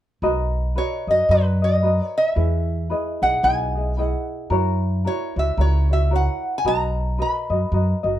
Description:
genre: Hawaiian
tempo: 112 BPM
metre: 4/4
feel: swing 60% on 8ths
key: B major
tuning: A4 = 441 Hz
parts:
  - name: tenor ukulele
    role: accompaniment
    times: 0.2-8.2 s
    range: E4 to D#5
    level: -25 LUFS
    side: equal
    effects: none
  - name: upright bass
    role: bass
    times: 0.2-8.2 s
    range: F#1 to F#2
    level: -21 LUFS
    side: equal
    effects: none
  - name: lap resonator guitar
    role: melody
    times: 0.8-8.2 s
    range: B4 to B5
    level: -22 LUFS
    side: equal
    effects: none
room: light reverb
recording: dark, warm production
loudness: -18 LUFS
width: side -12 dB against mid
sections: 0.2-8.2 A section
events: none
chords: 0.2 Bmaj7; 2.4 Emaj7; 4.5 F#7; 6.6 Bmaj7

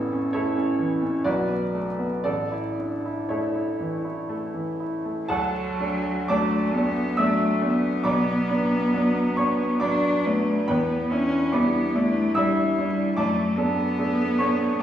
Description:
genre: classical, romantic duo for cello and grand piano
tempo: 56-75 BPM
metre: 3/4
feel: rubato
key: D major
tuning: A4 = 436 Hz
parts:
  - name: bright baby grand piano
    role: accompaniment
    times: 0.0-14.8 s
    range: A1 to E6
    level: -24 LUFS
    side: right 1 dB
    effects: none
  - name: rich cello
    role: melody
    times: 5.3-14.8 s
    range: F#3 to D4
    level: -24 LUFS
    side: left 1 dB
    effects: none
room: wet recital hall reverb, RT60 1.3 s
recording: recorded in a church or concert hall, vinyl crackle, small room ambience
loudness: -21 LUFS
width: side -10 dB against mid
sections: 0.0-5.3 A section; 5.3-14.8 B section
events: none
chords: 0.0 A; 1.3 Bm; 2.2 A; 5.3 D; 8.0 Bm; 10.7 Em7; 13.2 D/F#

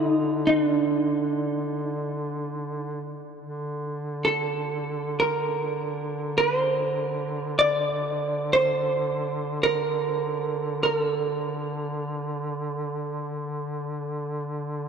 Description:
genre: caucasian folk, Caucasian lament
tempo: free time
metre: none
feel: none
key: unclear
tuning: A4 = 440 Hz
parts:
  - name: vintage hollow-body jazz guitar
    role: melody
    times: 0.0-14.4 s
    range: D4 to D5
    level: -24 LUFS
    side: right 2 dB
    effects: none
  - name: warm duduk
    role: drone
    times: 0.0-14.9 s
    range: D3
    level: -30 LUFS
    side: equal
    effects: none
room: wet cathedral reverb, RT60 5.6 s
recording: dark, warm production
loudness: -24 LUFS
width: side -6 dB against mid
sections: 0.0-3.4 A section; 3.4-14.9 A section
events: none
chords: none

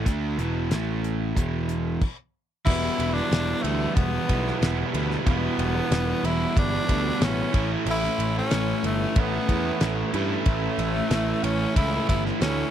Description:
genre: classic rock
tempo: 92 BPM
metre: 4/4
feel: straight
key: E dorian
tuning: A4 = 440 Hz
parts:
  - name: crunchy overdriven guitar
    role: riff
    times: 0.0-12.7 s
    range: E2 to E4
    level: -31 LUFS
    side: left 12 dB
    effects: none
  - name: overdriven semi-hollow guitar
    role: riff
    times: 0.0-12.7 s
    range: E2 to E4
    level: -30 LUFS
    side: right 13 dB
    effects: none
  - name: fuzz picked electric bass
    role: bass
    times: 0.0-12.6 s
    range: E1 to G2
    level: -28 LUFS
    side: equal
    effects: overdrive
  - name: damped 70s drum kit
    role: drums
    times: 0.1-12.6 s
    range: crash cymbal, hi-hat, kick drum, ride cymbal, snare drum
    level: -26 LUFS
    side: equal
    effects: none
  - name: raspy tenor saxophone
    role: melody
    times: 2.7-12.7 s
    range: A3 to E4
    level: -29 LUFS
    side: equal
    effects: none
  - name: bright tonewheel organ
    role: sustained chords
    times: 2.7-12.7 s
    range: E3 to A4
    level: -39 LUFS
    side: left 1 dB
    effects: none
  - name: overdriven electric guitar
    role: riff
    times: 2.7-12.7 s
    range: E2 to A3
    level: -33 LUFS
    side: equal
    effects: none
room: little or no reverb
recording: dry, close 1970s-style studio recording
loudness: -22 LUFS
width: side -10 dB against mid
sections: 0.0-2.7 A section; 2.7-12.7 B section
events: stop 2.0-2.7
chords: 0.0 E5; 0.7 A5; 1.4 E5; 2.0 N.C.; 2.7 Em; 7.5 A

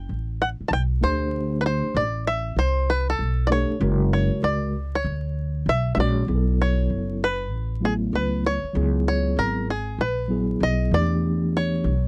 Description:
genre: hip hop, jazz-hop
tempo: 97 BPM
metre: 4/4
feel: swing 64% on 16ths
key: B dorian from 6.3 s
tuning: A4 = 444 Hz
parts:
  - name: bluegrass banjo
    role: melody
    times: 0.0-12.1 s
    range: G#4 to A5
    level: -28 LUFS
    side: equal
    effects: none
  - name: upright bass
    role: bass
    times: 0.0-12.1 s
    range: F#1 to E2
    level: -27 LUFS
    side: equal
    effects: none
  - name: mellow tine electric piano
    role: accompaniment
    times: 1.0-11.9 s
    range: C#3 to C#5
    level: -27 LUFS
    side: equal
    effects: none
room: little or no reverb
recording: dry, close 1970s-style studio recording, vinyl crackle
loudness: -23 LUFS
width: mono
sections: 0.0-6.3 A section; 6.3-12.1 B section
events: none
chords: 0.0 B7(no3); 1.0 D7sus4; 3.8 F#; 6.3 B9sus4; 8.8 C#m7; 10.9 Em7

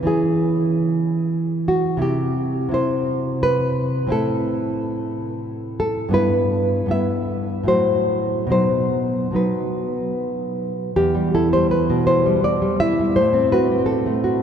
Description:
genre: romantic piece for solo classical guitar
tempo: 68-95 BPM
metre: 3/4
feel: rubato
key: E minor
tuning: A4 = 441 Hz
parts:
  - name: nylon-string guitar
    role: solo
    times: 0.0-14.4 s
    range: E2 to E5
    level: -18 LUFS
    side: equal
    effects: none
room: wet cathedral reverb, RT60 5.8 s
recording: recorded in a church or concert hall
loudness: -18 LUFS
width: side -8 dB against mid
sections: 0.0-11.0 A section; 11.0-14.4 B section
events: none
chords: 0.1 C#m/E; 2.0 C; 4.1 Am; 6.1 Em/G; 7.7 F#dim/A; 8.5 B; 11.0 Em; 13.2 F#dim/A

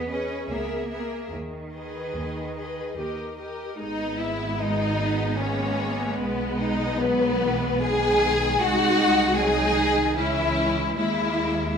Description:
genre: classical, slow romantic movement for string orchestra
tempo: 75 BPM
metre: 3/4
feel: rubato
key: G# minor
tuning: A4 = 440 Hz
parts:
  - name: rich studio violin section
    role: melody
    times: 0.0-11.8 s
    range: B4 to G#5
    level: -32 LUFS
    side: left 3 dB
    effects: none
  - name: rich studio violin section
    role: second line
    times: 0.0-11.8 s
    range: B3 to B4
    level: -25 LUFS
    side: left 2 dB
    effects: none
  - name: rich studio viola section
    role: accompaniment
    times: 0.0-11.8 s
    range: G#3 to G#4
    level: -29 LUFS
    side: right 2 dB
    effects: none
  - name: rich studio cello section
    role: bass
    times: 0.0-11.8 s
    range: D#3 to C#4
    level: -33 LUFS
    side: right 3 dB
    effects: none
  - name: rich studio double bass section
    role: bass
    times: 0.0-11.8 s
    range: G#1 to E2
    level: -32 LUFS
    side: right 2 dB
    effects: none
room: wet recital hall reverb, RT60 1.6 s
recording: minimal, uncompressed stereo recording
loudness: -22 LUFS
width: side -6 dB against mid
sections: 0.0-3.8 A section; 3.8-11.8 B section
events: none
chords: 0.0 Emaj7; 0.5 A#m7b5/C#; 1.3 G#m/D#; 3.0 D#; 3.8 G#m; 6.2 G#m/B; 8.6 G#7/B#; 10.2 C#m; 11.0 D#sus4

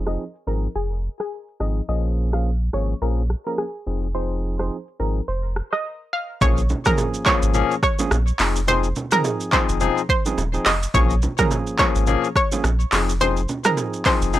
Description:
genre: afrobeats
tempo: 106 BPM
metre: 4/4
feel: swing 58% on 16ths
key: Bb minor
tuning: A4 = 440 Hz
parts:
  - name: barky tine electric piano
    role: accompaniment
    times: 0.0-14.4 s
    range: F3 to Ab4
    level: -25 LUFS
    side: moving between left 10 dB and right 4 dB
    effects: auto-pan
  - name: saturated sub bass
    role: bass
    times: 0.0-14.4 s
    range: Eb1 to Bb1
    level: -22 LUFS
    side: equal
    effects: none
  - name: analog pluck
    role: melody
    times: 0.1-14.2 s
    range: Ab4 to F5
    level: -24 LUFS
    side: right 1 dB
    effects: chorus, tape echo
  - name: deep house drum kit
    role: drums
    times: 0.1-14.4 s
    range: handclaps, hi-hat, kick drum, rim click, shaker, toms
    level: -22 LUFS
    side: equal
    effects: overdrive
  - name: congas and bongos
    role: percussion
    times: 6.4-14.4 s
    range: none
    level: -29 LUFS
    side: right 3 dB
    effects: none
room: little or no reverb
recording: dry, gritty hardware recording, low-pass filter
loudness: -19 LUFS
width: side -14 dB against mid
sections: 0.0-6.4 A section; 6.4-14.4 B section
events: filter sweep 0.0-6.4; break 5.8-6.4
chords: 0.0 Fm7; 1.9 Bbm7; 3.9 Fm7; 6.4 Bbm7; 8.4 Fm7; 10.9 Bbm7; 12.9 Fm7

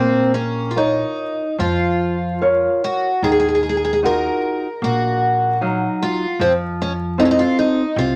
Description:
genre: fado-style ballad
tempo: 75 BPM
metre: 4/4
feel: rubato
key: Bb minor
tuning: A4 = 440 Hz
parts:
  - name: picked twelve-string acoustic guitar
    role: melody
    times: 0.0-8.2 s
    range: C4 to Bb4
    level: -21 LUFS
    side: equal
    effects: none
  - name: flamenco guitar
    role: accompaniment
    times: 0.0-8.2 s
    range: C3 to F5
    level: -22 LUFS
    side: equal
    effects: none
  - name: upright bass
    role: bass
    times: 0.0-8.2 s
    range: Bb1 to F2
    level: -29 LUFS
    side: equal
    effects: none
room: moderate studio reverb, RT60 0.8 s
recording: vinyl crackle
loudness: -19 LUFS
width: mono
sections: 0.0-8.2 A section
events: none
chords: 0.0 Bbm; 3.2 Ebmadd9; 6.4 F

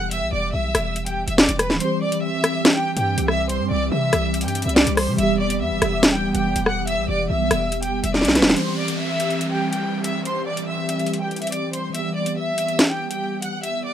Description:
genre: hip hop, drill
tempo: 142 BPM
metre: 4/4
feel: half-time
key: unclear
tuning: A4 = 442 Hz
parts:
  - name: warm studio violin section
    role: melody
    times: 0.0-13.9 s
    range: G4 to F#6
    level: -24 LUFS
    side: equal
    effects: none
  - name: mellow tine electric piano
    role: accompaniment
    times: 0.0-13.9 s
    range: E3 to G4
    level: -29 LUFS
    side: equal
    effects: medium stereo tremolo
  - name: hard-hitting 808-style bass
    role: bass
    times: 0.0-8.6 s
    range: D1 to C3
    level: -26 LUFS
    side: equal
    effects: none
  - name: drill drum kit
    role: drums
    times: 0.1-13.7 s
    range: hi-hat, rim click, snare drum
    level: -18 LUFS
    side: equal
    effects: none
  - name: hollow soft pad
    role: sustained chords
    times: 1.8-13.9 s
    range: E3 to G4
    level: -26 LUFS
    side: right 2 dB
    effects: ensemble chorus
  - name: downlifter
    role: sound effects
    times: 8.6-11.9 s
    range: none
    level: -33 LUFS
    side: equal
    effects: none
room: light reverb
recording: rough home demo mix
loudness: -19 LUFS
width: side -10 dB against mid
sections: 0.0-8.6 A section; 8.6-13.9 B section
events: break 1.8-2.6; drum fill 8.1-8.6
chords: 0.0 Em; 1.8 C; 5.2 Em; 8.6 C; 11.9 Em

